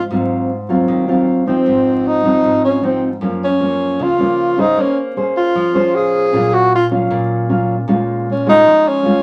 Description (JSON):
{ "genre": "bossa nova", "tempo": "154 BPM", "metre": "4/4", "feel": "straight", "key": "Bb minor", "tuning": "A4 = 441 Hz", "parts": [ { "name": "breathy tenor saxophone", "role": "melody", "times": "0.0-9.2 s", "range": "C4 to Ab4", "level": "-16 LUFS", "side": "equal", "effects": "none" }, { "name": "nylon-string guitar", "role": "accompaniment", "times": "0.0-9.2 s", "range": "Gb2 to C5", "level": "-18 LUFS", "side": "equal", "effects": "none" } ], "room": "moderate studio ambience, RT60 0.5 s", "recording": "vinyl crackle", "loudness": "-15 LUFS", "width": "mono", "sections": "0.0-9.2 A section", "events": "tenor saxophone solo 0.0-9.2", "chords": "0.1 Ab6; 1.3 Ebm69; 1.7 Ab6; 3.2 Gbmaj7; 4.8 Bbm9; 6.3 Gbmaj7/Bb; 7.9 Bbm7", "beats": "| 0.11 0.50 0.89 1.27 | 1.66 2.05 2.44 2.83 | 3.22 3.61 4.00 4.38 | 4.77 5.16 5.55 5.94 | 6.33 6.72 7.11 7.50 | 7.89 8.28 8.66 9.05" }